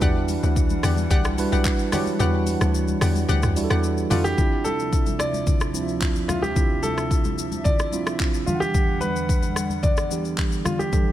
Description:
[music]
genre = amapiano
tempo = 110 BPM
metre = 4/4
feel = straight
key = unclear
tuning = A4 = 443 Hz
[part]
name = mellow tine electric piano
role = accompaniment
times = 0.0-11.1 s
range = E3 to F#5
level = -27 LUFS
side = right 5 dB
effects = none
[part]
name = hollow soft pad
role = sustained chords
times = 0.0-11.1 s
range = D2 to F#5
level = -30 LUFS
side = left 2 dB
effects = chorus
[part]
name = hollow square pluck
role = stabs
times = 0.0-4.2 s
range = G4 to F#5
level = -30 LUFS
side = left 4 dB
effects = chorus, ping-pong delay
[part]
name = hollow log drum bass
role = bass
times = 0.0-4.3 s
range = B1 to F2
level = -23 LUFS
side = equal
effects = none
[part]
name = deep house drum kit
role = drums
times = 0.0-11.1 s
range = handclaps, hi-hat, kick drum, rim click, shaker, toms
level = -24 LUFS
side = equal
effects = none
[part]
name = congas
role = percussion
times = 0.0-11.1 s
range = none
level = -32 LUFS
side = left 4 dB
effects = none
[part]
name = warm grand piano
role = melody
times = 4.1-11.1 s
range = F4 to D5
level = -27 LUFS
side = equal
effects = ping-pong delay
[sound]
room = little or no reverb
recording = none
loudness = -20 LUFS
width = side -12 dB against mid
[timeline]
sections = 0.0-4.4 A section; 4.4-11.1 B section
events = drop 0.0-4.4; kick muted 2.2-4.4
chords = 0.0 Em9; 4.4 Dm9; 8.5 Em9

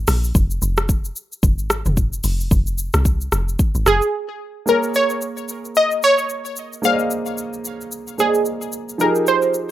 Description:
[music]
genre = amapiano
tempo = 111 BPM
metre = 4/4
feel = swing 58% on 16ths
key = unclear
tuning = A4 = 441 Hz
[part]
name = deep log drum bass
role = bass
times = 0.0-4.0 s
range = F1 to C2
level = -20 LUFS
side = equal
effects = none
[part]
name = deep house drum kit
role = drums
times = 0.1-9.7 s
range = hi-hat, kick drum, rim click, shaker, toms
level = -20 LUFS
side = equal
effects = none
[part]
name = analog pluck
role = melody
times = 3.9-9.7 s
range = Ab4 to F5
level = -18 LUFS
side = right 1 dB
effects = chorus, ping-pong delay
[part]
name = warm concert grand piano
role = accompaniment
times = 4.7-9.7 s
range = F3 to Eb5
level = -23 LUFS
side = right 2 dB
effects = none
[sound]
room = little or no reverb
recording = rough home demo mix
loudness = -17 LUFS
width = side -13 dB against mid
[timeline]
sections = 0.0-4.7 A section; 4.7-9.7 B section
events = drop 0.0-4.7; break 4.1-4.7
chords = 0.4 N.C.; 4.7 Bbm9; 9.0 Fm9

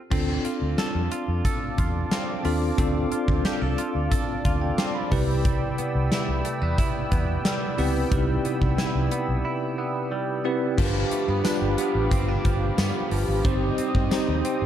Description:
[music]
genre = 1980s-style pop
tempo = 90 BPM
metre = 4/4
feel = straight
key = unclear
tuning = A4 = 440 Hz
[part]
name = bell-like tine electric piano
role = accompaniment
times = 0.1-14.7 s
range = C3 to B5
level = -28 LUFS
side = equal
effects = fast stereo tremolo
[part]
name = brassy analog pad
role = sustained chords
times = 0.1-14.7 s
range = G4 to E6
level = -32 LUFS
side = equal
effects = chorus
[part]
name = direct-recorded clean electric guitar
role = riff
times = 0.1-14.7 s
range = F3 to A4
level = -32 LUFS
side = right 4 dB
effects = lush chorus, digital delay
[part]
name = vintage muted fingered electric bass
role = bass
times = 0.1-14.7 s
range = G1 to G2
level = -26 LUFS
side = equal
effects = none
[part]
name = gated 80s drum kit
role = drums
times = 0.1-14.6 s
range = crash cymbal, hi-hat, kick drum, snare drum, tambourine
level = -26 LUFS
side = equal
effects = none
[part]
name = raw garage guitar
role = accompaniment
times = 10.8-14.7 s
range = G2 to C4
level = -36 LUFS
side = equal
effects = overdrive, wide subtle chorus
[sound]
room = light reverb, small room reverb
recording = dark, warm production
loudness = -22 LUFS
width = side -10 dB against mid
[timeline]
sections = 0.1-10.8 A section; 10.8-14.7 B section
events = tine electric piano fill 4.1-5.4; break 9.4-10.8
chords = 0.1 Dm7; 5.1 Cmaj7; 10.8 G7; 13.4 Cm/G

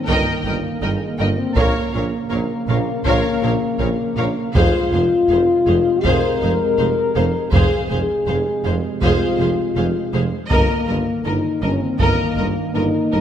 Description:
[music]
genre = cinematic, epic orchestral film score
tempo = 81 BPM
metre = 4/4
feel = straight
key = F minor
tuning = A4 = 438 Hz
[part]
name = dark trombone section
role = sustained chords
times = 0.0-13.2 s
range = C3 to Bb3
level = -26 LUFS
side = right 4 dB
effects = none
[part]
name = mellow French horn section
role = sustained chords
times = 0.0-13.2 s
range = Ab3 to Bb4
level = -21 LUFS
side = left 4 dB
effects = none
[part]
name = rich symphonic violin section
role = melody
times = 0.1-13.2 s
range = Eb5 to G5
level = -30 LUFS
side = left 3 dB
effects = none
[part]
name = rich symphonic violin section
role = second line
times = 0.1-13.2 s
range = Bb4 to Eb5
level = -27 LUFS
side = left 2 dB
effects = none
[part]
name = rich symphonic viola section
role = accompaniment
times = 0.1-13.2 s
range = Ab4 to Bb4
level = -27 LUFS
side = right 3 dB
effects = none
[part]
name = clear symphonic double bass section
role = bass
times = 0.1-13.2 s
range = F1 to Bb1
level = -25 LUFS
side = right 3 dB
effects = none
[part]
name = clear tuba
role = bass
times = 0.1-13.2 s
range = F1 to Bb1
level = -27 LUFS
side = right 4 dB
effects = none
[part]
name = rich symphonic cello section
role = bass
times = 0.1-13.2 s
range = F2 to Bb2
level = -25 LUFS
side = right 2 dB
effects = none
[part]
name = solo taiko drums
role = drums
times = 0.1-12.7 s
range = none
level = -22 LUFS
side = equal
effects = none
[sound]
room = moderate scoring stage reverb, RT60 1.6 s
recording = none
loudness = -16 LUFS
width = side -9 dB against mid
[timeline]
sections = 0.0-13.2 A section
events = none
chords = 0.0 Eb/G; 1.6 Bbm; 4.6 Fm; 10.5 Eb/G

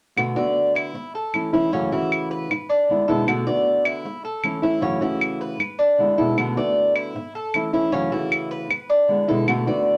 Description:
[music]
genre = latin, Cuban son and guajira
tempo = 155 BPM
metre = 4/4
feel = straight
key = A major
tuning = A4 = 439 Hz
[part]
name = nylon-string guitar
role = accompaniment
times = 0.2-10.0 s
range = F#2 to F#4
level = -25 LUFS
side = equal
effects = none
[part]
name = claves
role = percussion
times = 0.2-9.7 s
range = none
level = -25 LUFS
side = equal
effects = none
[part]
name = Cuban tres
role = arpeggios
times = 0.4-10.0 s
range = C#4 to D5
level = -25 LUFS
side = equal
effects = none
[sound]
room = wet club reverb, RT60 0.5 s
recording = none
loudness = -22 LUFS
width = mono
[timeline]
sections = 0.2-10.0 A section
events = none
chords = 0.2 Bm7; 0.9 A; 1.7 F#m7; 2.5 E7; 3.3 Bm7; 4.1 A; 4.8 F#m7; 5.6 E7; 6.4 Bm7; 7.2 A; 7.9 F#m7; 8.7 E7

